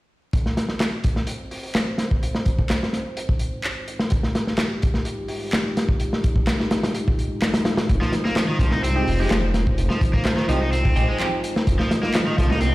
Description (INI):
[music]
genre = breakbeat, breaks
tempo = 127 BPM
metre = 4/4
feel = straight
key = F minor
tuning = A4 = 440 Hz
[part]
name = dark analog pad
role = sustained chords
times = 0.3-12.7 s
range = Ab3 to Eb5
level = -29 LUFS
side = left 1 dB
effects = chorus, sidechain pumping
[part]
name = crunchy breakbeat drum kit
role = drums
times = 0.3-12.7 s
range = hi-hat, kick drum, snare drum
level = -22 LUFS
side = equal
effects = none
[part]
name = electronic handclaps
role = drums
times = 0.8-12.2 s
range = none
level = -31 LUFS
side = equal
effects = overdrive
[part]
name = detuned saw bass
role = bass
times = 7.9-12.7 s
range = F1 to C2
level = -21 LUFS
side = equal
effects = tube saturation
[part]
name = cranked stack guitar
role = riff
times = 8.0-12.7 s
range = Eb3 to Eb4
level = -26 LUFS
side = equal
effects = overdrive, tube saturation, ping-pong delay
[part]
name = band-passed chord stab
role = stabs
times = 9.0-11.3 s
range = Ab3 to G4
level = -29 LUFS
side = right 2 dB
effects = phaser, ping-pong delay
[part]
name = riser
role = sound effects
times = 12.1-12.7 s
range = none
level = -30 LUFS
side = right 3 dB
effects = none
[sound]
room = light reverb, studio reverb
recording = played on a big sound system in a bare room, large studio reverb, vinyl crackle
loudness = -19 LUFS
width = side -18 dB against mid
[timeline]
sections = 0.3-12.7 A section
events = riser 12.1-12.7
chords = 0.3 Fm7